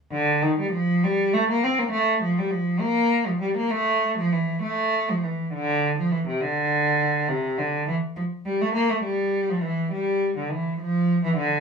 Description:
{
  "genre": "classical, baroque-style suite movement for unaccompanied cello",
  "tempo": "68 BPM (dotted quarters)",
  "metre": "12/8",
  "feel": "rubato",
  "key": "D minor",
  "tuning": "A4 = 442 Hz",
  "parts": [
    { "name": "warm cello", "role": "solo", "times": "0.1-11.6 s", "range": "C3 to C4", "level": "-21 LUFS", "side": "equal", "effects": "none" }
  ],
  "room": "light reverb",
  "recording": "small room ambience",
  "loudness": "-21 LUFS",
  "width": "side -5 dB against mid",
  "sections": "0.1-11.6 A section",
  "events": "none",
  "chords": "none",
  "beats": "| 0.11 1.03 1.92 2.80 | 3.70 4.62 5.52 6.40 | 7.28 8.16 9.03 9.91 | 10.79"
}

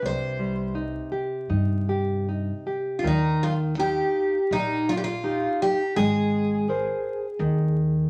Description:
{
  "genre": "fado-style ballad",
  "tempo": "75-88 BPM",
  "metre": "4/4",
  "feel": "rubato",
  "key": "C minor, Eb major from 3.0 s",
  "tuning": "A4 = 440 Hz",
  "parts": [
    { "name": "picked twelve-string acoustic guitar", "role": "melody", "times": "0.0-8.0 s", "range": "Eb4 to C5", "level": "-28 LUFS", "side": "equal", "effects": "none" },
    { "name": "nylon-string guitar", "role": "accompaniment", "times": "0.0-8.1 s", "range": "C3 to C5", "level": "-28 LUFS", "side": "equal", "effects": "none" },
    { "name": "upright bass", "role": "bass", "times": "0.0-8.1 s", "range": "Ab1 to G2", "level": "-31 LUFS", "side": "equal", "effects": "none" }
  ],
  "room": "wet studio reverb, RT60 0.6 s",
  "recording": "vinyl crackle",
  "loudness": "-25 LUFS",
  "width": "mono",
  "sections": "0.0-3.0 A section; 3.0-8.1 B section",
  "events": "none",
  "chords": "0.0 Cm; 3.0 Ebadd9; 6.0 Abadd9",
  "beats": "| 0.03 0.75 1.50 2.27 | 3.04 3.78 4.52 5.25 | 5.96 6.68 7.39 8.09"
}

